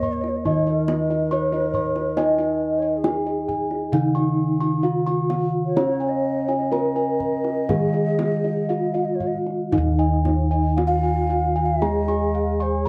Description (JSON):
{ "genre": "Javanese gamelan", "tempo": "57-70 BPM", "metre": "4/4", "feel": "straight", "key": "Eb slendro", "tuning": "A4 = 442 Hz", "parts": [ { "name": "gamelan-type bronze metallophone", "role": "melody", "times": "0.0-12.9 s", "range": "Eb4 to Eb5", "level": "-27 LUFS", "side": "equal", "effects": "none" }, { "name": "mellow hollow bansuri", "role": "second line", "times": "0.0-12.9 s", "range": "Ab4-38c to F5+31c", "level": "-31 LUFS", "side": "equal", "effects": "none" }, { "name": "gamelan-type bronze metallophone", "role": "accompaniment", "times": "0.0-12.9 s", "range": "Eb3 to Eb4", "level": "-29 LUFS", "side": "equal", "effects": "none" }, { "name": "gamelan-type bossed gongs", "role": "arpeggios", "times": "0.0-12.9 s", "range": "Eb5 to Db6-45c", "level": "-31 LUFS", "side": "equal", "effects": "none" }, { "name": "gamelan-type bossed gongs", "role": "bass", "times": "0.0-12.9 s", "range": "Eb2 to Eb5", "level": "-28 LUFS", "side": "equal", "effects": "none" }, { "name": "kendang", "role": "percussion", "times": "0.0-12.2 s", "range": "none", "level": "-33 LUFS", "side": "equal", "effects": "none" }, { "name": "gamelan-type bronze metallophone", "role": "arpeggios", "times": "9.7-12.8 s", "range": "Db5-45c to Ab5-35c", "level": "-36 LUFS", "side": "equal", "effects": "analog delay" } ], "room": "moderate studio reverb, RT60 0.6 s", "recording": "cassette tape", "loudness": "-22 LUFS", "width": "mono", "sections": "0.0-9.7 A section; 9.7-12.9 B section", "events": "none", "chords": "none", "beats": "0.46 1.31 | 2.17 3.04 3.92 4.83 | 5.76 6.71 7.69 8.70 | 9.73 10.77 11.82 12.87" }